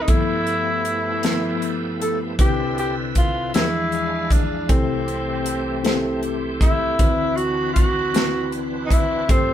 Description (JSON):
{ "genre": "slow gospel", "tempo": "52 BPM (dotted quarters)", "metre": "6/8", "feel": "straight", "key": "unclear", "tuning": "A4 = 440 Hz", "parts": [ { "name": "warm tenor saxophone", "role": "melody", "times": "0.0-9.5 s", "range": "C4 to A4", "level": "-23 LUFS", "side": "equal", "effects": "none" }, { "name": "mellow tine electric piano", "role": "accompaniment", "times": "0.0-9.5 s", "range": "C2 to B4", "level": "-25 LUFS", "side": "left 2 dB", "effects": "slow stereo tremolo" }, { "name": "bright tonewheel organ", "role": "sustained chords", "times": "0.0-9.5 s", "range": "C2 to F5", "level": "-30 LUFS", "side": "right 4 dB", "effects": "slow rotary speaker, chorus vibrato" }, { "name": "crisp fusion drum kit", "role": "drums", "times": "0.1-9.5 s", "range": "hi-hat, kick drum, snare drum", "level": "-19 LUFS", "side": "equal", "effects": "none" } ], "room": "moderate studio reverb, RT60 0.6 s", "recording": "band playing live in one room", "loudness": "-18 LUFS", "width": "side -10 dB against mid", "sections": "0.0-9.5 A section", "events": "none", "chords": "0.1 G13; 2.4 Cmaj9; 3.5 E7b9; 4.7 Am7/C; 7.0 D13", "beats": "| 0.08 1.24 | 2.39 3.54 | 4.69 5.84 | 7.00 8.14 | 9.29" }